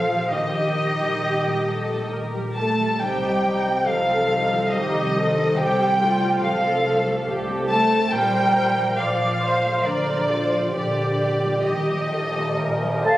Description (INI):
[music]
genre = cinematic, emotional film score for orchestra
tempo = 64-72 BPM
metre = 3/4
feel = rubato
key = unclear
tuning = A4 = 440 Hz
[part]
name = muted studio violin section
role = melody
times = 0.0-13.2 s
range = Eb4 to C5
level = -30 LUFS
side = left 1 dB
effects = none
[part]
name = muted violin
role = melody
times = 0.0-13.1 s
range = D5 to A5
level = -25 LUFS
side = equal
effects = none
[part]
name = muted studio violin section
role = second line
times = 0.0-13.1 s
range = D5 to A5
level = -27 LUFS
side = right 1 dB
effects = none
[part]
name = muted studio viola section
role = accompaniment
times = 0.0-13.0 s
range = F4 to D5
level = -26 LUFS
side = equal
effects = none
[part]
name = concert harp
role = arpeggios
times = 0.0-13.2 s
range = Bb2 to D6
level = -30 LUFS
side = left 2 dB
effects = none
[part]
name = muted studio cello section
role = bass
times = 0.0-13.2 s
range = D3 to A3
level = -28 LUFS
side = right 1 dB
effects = none
[part]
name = muted studio double bass section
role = bass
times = 0.0-13.2 s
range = Bb1 to C2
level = -30 LUFS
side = right 1 dB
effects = none
[part]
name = cymbal swell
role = percussion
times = 10.8-13.2 s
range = none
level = -30 LUFS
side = equal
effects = none
[part]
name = clear oboe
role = second line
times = 13.1-13.2 s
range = A5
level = -19 LUFS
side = equal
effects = none
[part]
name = hollow flute section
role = second line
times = 13.1-13.2 s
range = F5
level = -19 LUFS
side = right 1 dB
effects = none
[part]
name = mellow French horn section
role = sustained chords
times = 13.1-13.2 s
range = A4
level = -22 LUFS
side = left 1 dB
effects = none
[sound]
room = wet scoring stage reverb, RT60 1.7 s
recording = recorded on a phone in the room, club reverb, compression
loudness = -19 LUFS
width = side -15 dB against mid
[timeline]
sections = 0.0-13.2 A section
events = none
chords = 0.3 Eb/Bb; 3.0 Cmadd9; 5.6 F/C; 8.1 Bbsus2; 10.8 Eb/Bb